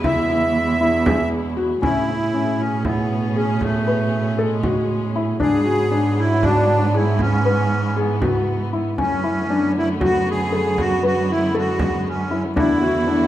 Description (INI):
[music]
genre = contemporary instrumental, chamber music in an uneven meter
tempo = 235 BPM (eighths)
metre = 7/8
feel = straight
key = unclear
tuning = A4 = 441 Hz
[part]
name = accordion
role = melody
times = 0.0-13.3 s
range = G#3 to E5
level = -22 LUFS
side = right 1 dB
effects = light tremolo tuning
[part]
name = muted studio string section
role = sustained chords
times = 0.0-13.3 s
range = G#2 to G#4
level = -29 LUFS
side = left 2 dB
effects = none
[part]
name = felt-muted upright piano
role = arpeggios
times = 0.0-13.3 s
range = C#4 to B4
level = -22 LUFS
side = left 3 dB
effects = none
[part]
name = muted cello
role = bass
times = 0.0-13.3 s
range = E2 to A2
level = -22 LUFS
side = right 3 dB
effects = none
[part]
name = frame drum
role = percussion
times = 0.0-12.8 s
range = none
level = -25 LUFS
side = right 1 dB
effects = none
[sound]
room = moderate recital hall reverb, RT60 1.6 s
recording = none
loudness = -17 LUFS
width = side -13 dB against mid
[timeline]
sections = 0.0-1.8 A section; 1.8-13.3 B section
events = none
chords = 0.0 E; 1.8 Amaj9; 5.4 G#m7b5; 9.0 Bm9/F#; 12.6 E9sus4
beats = | 0.04 0.30 0.56 0.81 1.07 1.32 1.58 | 1.83 2.09 2.34 2.60 2.85 3.11 3.37 | 3.62 3.88 4.13 4.39 4.64 4.90 5.15 | 5.41 5.67 5.92 6.18 6.43 6.69 6.94 | 7.20 7.46 7.71 7.97 8.22 8.48 8.73 | 8.99 9.24 9.50 9.76 10.01 10.27 10.52 | 10.78 11.03 11.29 11.54 11.80 12.05 12.31 | 12.56 12.82 13.07